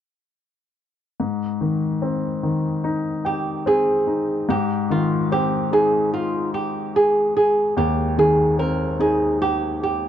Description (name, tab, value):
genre	pop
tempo	73 BPM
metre	4/4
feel	straight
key	Ab major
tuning	A4 = 441 Hz
part	clear baby grand piano	accompaniment	1.2-10.1 s	Eb2 to G5	-22 LUFS	left 3 dB	none
part	flamenco guitar	melody	3.3-10.1 s	F4 to Bb4	-19 LUFS	right 2 dB	plate reverb
room	moderate booth ambience, RT60 0.2 s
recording	worn, warbling old tape, cassette tape, warbly pitch drift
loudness	-18 LUFS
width	side -10 dB against mid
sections	1.2-4.5 A section; 4.5-10.1 B section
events	none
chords	1.2 Abmaj7; 4.5 Ab